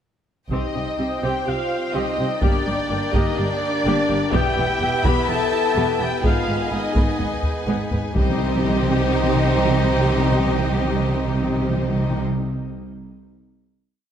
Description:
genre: cinematic, epic orchestral film score.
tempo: 126 BPM.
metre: 4/4.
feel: straight.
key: C minor.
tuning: A4 = 440 Hz.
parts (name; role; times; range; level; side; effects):
dark symphonic violin section; melody; 0.5-12.2 s; G4 to B5; -29 LUFS; left 2 dB; none.
warm studio violin section; second line; 0.5-12.2 s; C4 to Ab5; -32 LUFS; left 4 dB; none.
dark studio viola section; accompaniment; 0.5-12.2 s; G3 to Ab4; -28 LUFS; equal; none.
clear trombone section; sustained chords; 0.5-12.2 s; Eb3 to C4; -32 LUFS; right 4 dB; none.
mellow French horn section; sustained chords; 0.5-12.2 s; D4 to C5; -28 LUFS; left 2 dB; none.
rich symphonic string section; sustained chords; 0.5-12.2 s; C4 to Ab5; -30 LUFS; left 1 dB; none.
mellow trumpet section; stabs; 0.5-12.2 s; Eb4 to B5; -29 LUFS; equal; none.
rich symphonic double bass section; bass; 0.5-12.2 s; E1 to C2; -27 LUFS; right 2 dB; none.
warm symphonic cello section; bass; 0.5-12.2 s; E2 to C3; -27 LUFS; right 2 dB; none.
taiko ensemble; drums; 0.5-9.1 s; none; -23 LUFS; equal; none.
timpani; percussion; 0.5-1.2, 8.2-12.2 s; C3; -24 LUFS; left 1 dB; none.
room: moderate scoring stage reverb, RT60 1.9 s.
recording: none.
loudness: -18 LUFS.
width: side -9 dB against mid.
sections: 0.5-8.2 theme; 8.2-12.0 final chord.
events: none.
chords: 0.5 Cm; 2.4 Gm; 4.3 Em; 6.2 Abm; 8.2 Cm.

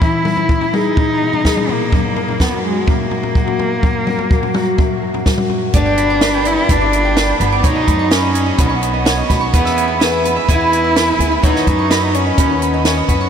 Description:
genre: indie folk with a building arrangement.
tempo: 126 BPM.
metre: 4/4.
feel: straight.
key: B major.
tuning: A4 = 440 Hz.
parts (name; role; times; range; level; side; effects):
warm cello; melody; 0.0-12.9 s; G#3 to E4; -18 LUFS; right 1 dB; tape echo.
fingerpicked steel-string acoustic guitar; accompaniment; 0.0-5.7 s; F#2 to E5; -22 LUFS; left 2 dB; none.
compact cocktail drum kit; drums; 0.0-13.2 s; hi-hat, kick drum, snare drum, toms; -17 LUFS; equal; none.
picked old ladder-braced acoustic guitar; accompaniment; 5.7-13.3 s; G2 to G#4; -22 LUFS; left 5 dB; wide subtle chorus.
mandolin; arpeggios; 5.7-13.3 s; B4 to D6; -20 LUFS; right 4 dB; tape echo.
upright bass; bass; 5.7-13.3 s; G1 to F#2; -20 LUFS; equal; none.
room: wet huge ambient reverb, RT60 6.9 s.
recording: dreamy mix soaked in reverb.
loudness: -12 LUFS.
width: side -8 dB against mid.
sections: 0.0-5.7 A section; 5.7-13.3 B section.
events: none.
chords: 0.0 Emaj7; 1.9 F#7; 5.7 G; 7.6 Badd9; 9.5 E; 11.4 Badd9/D#.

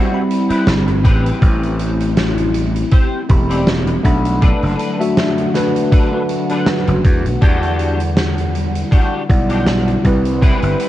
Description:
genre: vaporwave.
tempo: 80 BPM.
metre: 4/4.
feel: swing 55% on 16ths.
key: unclear.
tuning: A4 = 439 Hz.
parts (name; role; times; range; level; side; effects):
bell-like tine electric piano; accompaniment; 0.0-10.9 s; G3 to B5; -20 LUFS; equal; lush chorus, analog delay.
warbly tape-like pad; sustained chords; 0.9-10.9 s; D3 to F#5; -24 LUFS; left 1 dB; chorus, built-in reverb.
electric guitar at the edge of break-up; riff; 0.0-10.9 s; C4 to D5; -24 LUFS; left 2 dB; ensemble chorus, vintage 12-bit sampler grit, analog delay.
huge arena drum kit; drums; 0.3-10.9 s; hi-hat, snare drum; -23 LUFS; right 1 dB; none.
gritty slap bass; bass; 0.5-10.7 s; E1 to E2; -18 LUFS; equal; overdrive, tube saturation.
electronic kick drum; drums; 1.0-10.6 s; none; -12 LUFS; equal; none.
room: light reverb, small room ambience.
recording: cassette tape.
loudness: -13 LUFS.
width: side -14 dB against mid.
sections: 0.0-10.9 A section.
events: none.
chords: 0.0 Cmaj7; 1.0 Am9; 4.4 Bm7; 7.4 Em9.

